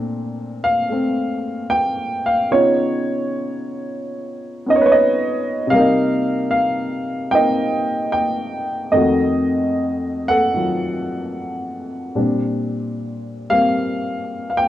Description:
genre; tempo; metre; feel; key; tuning
solo jazz; 75 BPM; 4/4; swing 69% on 8ths; unclear; A4 = 440 Hz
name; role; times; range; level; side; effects
warm baby grand piano; solo; 0.0-14.7 s; F2 to G5; -17 LUFS; equal; none
room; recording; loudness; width
wet studio reverb, RT60 0.5 s; worn, warbling old tape, cassette tape, warbly pitch drift; -17 LUFS; side -12 dB against mid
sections
0.0-14.7 A section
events
none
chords
0.0 Bbmaj9; 2.5 C#9; 5.7 Cm7; 8.9 F7b9; 12.2 Bb69

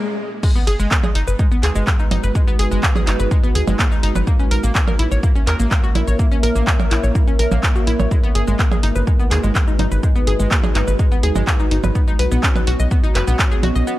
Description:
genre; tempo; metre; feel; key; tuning
melodic techno; 125 BPM; 4/4; straight; G# minor; A4 = 440 Hz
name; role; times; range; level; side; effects
deep dark ambient pad; sustained chords; 0.4-14.0 s; G#3 to E5; -25 LUFS; equal; chorus, built-in reverb, sidechain pumping
analog pluck; arpeggios; 0.4-13.9 s; G#3 to D#5; -24 LUFS; left 1 dB; chorus, sidechain pumping, tape echo
electronic kick drum; drums; 0.4-13.5 s; none; -17 LUFS; equal; none
techno drum kit; drums; 0.4-14.0 s; crash cymbal, handclaps, hi-hat, percussion blips, shaker; -23 LUFS; right 2 dB; high-pass filter on perc, high-pass filter on hats, high-pass filter on cymbals, high-pass filter on snare, high-pass filter on room
tight sequencer bass; bass; 0.7-13.8 s; F#1 to E2; -18 LUFS; equal; transformer saturation, sidechain pumping
room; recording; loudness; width
digital ambience; dry, gritty hardware recording; -14 LUFS; side -16 dB against mid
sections
0.4-14.0 A section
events
stop 0.0-0.4; drop 0.4-14.0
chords
0.4 G#m7; 4.3 A#dim; 8.1 G#m7; 12.0 Badd9

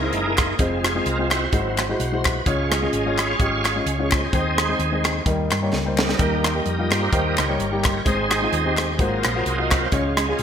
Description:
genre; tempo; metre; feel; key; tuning
uptempo gospel; 129 BPM; 4/4; swing 55% on 8ths; Ab major; A4 = 440 Hz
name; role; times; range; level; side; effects
warm upright piano; accompaniment; 0.0-10.4 s; Ab2 to Eb5; -25 LUFS; left 2 dB; none
bright tonewheel organ; sustained chords; 0.0-10.4 s; Gb3 to F5; -24 LUFS; right 2 dB; fast rotary speaker, overdrive, chorus vibrato
hollow-body short-scale fingered electric bass; bass; 0.0-10.4 s; F1 to G2; -26 LUFS; equal; none
crisp fusion drum kit; drums; 0.1-10.4 s; hi-hat, kick drum, rim click, snare drum; -23 LUFS; right 1 dB; gated reverb
group handclap; percussion; 0.4-10.3 s; none; -31 LUFS; left 8 dB; none
room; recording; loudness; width
moderate lush hall reverb, RT60 1.7 s, small room reverb; bright 1980s-style digital production; -19 LUFS; side -8 dB against mid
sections
0.0-10.4 A section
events
tonewheel organ solo 0.0-10.4; drum fill 5.7-6.2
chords
0.0 C7alt; 0.6 Fm; 1.5 Ab7alt; 2.5 Db; 4.3 Ab/Eb; 5.3 Eb; 8.1 Ab; 9.0 Ab13; 9.9 Db

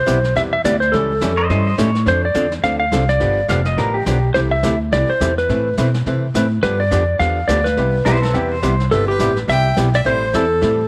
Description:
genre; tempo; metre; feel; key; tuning
country, western swing; 210 BPM; 4/4; swing 59% on 8ths; C major; A4 = 440 Hz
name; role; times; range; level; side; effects
clean lap steel guitar; melody; 0.0-10.9 s; G4 to F5; -20 LUFS; equal; none
upright bass; bass; 0.0-10.9 s; F1 to B2; -22 LUFS; equal; none
archtop guitar, miked and amplified; accompaniment; 0.1-10.8 s; C3 to B4; -25 LUFS; equal; none
vintage brush drum kit; drums; 0.1-10.9 s; brushed snare drum, hi-hat, kick drum, snare drum; -30 LUFS; equal; none
pedal steel guitar; second line; 1.4-4.3, 8.1-8.8 s; C4 to F5; -25 LUFS; equal; none
clear fiddle; second line; 8.9-10.9 s; A4 to G5; -26 LUFS; equal; none
room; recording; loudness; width
light reverb, small room ambience; none; -17 LUFS; mono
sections
0.0-10.9 A section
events
none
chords
0.0 Cmaj7; 0.9 A7; 2.1 Dm7; 3.2 G7; 4.3 C6; 5.5 Amadd9; 6.6 G7; 7.8 Cmaj7; 10.1 Am7

